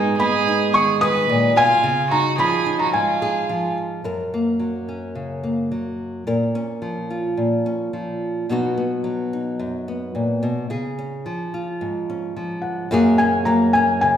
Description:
acoustic folk duo or small band; 108 BPM; 4/4; straight; F# major; A4 = 437 Hz
felt-muted upright piano; melody; 0.0-3.7, 12.6-14.2 s; F#5 to D#6; -19 LUFS; left 1 dB
rich violin; second line; 0.0-3.7 s; D#4 to B4; -22 LUFS; right 4 dB
nylon-string guitar; accompaniment; 0.0-14.2 s; F#2 to A#4; -21 LUFS; equal
wet recital hall reverb, RT60 1.3 s; recorded in a church or concert hall; -18 LUFS; side -9 dB against mid
0.0-4.1 A section; 4.1-12.9 B section; 12.9-14.2 A section
0.0 G#m; 1.8 C#add9; 4.1 F#; 6.3 A#m; 8.5 B; 10.7 C#; 12.9 F#add9
0.19 0.74 1.29 | 1.84 2.40 2.95 3.50 | 4.05 4.61 5.16 5.71 | 6.27 6.82 7.37 7.93 | 8.48 9.04 9.59 10.14 | 10.70 11.25 11.80 12.36 | 12.91 13.46 14.02

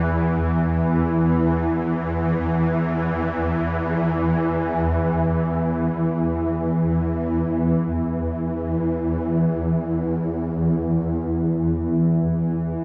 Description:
ambient; free time; A4 = 440 Hz
swarming drone; solo; 0.0-12.8 s; E2 to E3; -22 LUFS; equal; built-in reverb, diffuse ambient delay
wet cathedral reverb, RT60 7.1 s; nothing above 7.8 kHz; -22 LUFS; mono
0.0-7.5 A section; 7.5-12.8 B section
free time

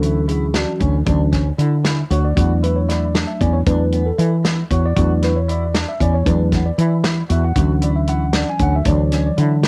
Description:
progressive instrumental, band music in an uneven meter; 231 BPM (eighths); 5/8; straight; D major; A4 = 443 Hz
mellow tine electric piano; accompaniment; 0.0-9.7 s; E3 to G#5; -24 LUFS; equal; cassette tape
electric guitar at the edge of break-up; arpeggios; 0.0-9.7 s; B3 to F#4; -30 LUFS; equal; lush chorus, cassette tape, analog delay
woody fretless electric bass; bass; 0.0-9.7 s; D2 to E3; -19 LUFS; equal
warm soul drum kit; drums; 0.0-9.7 s; hi-hat, kick drum, snare drum; -24 LUFS; equal
small room reverb; home recording on cassette; -17 LUFS; mono
0.0-9.7 A section
tine electric piano solo 0.0-9.7
0.0 Dmaj9; 2.4 E9sus4; 7.6 Dmaj9
0.03 0.29 0.55 0.81 | 1.07 1.33 1.59 1.85 2.11 | 2.37 2.63 2.89 3.15 3.41 | 3.67 3.93 4.19 4.45 4.71 | 4.96 5.22 5.48 5.74 6.00 | 6.26 6.52 6.78 7.04 7.30 | 7.56 7.82 8.08 8.34 8.60 | 8.86 9.12 9.38 9.64

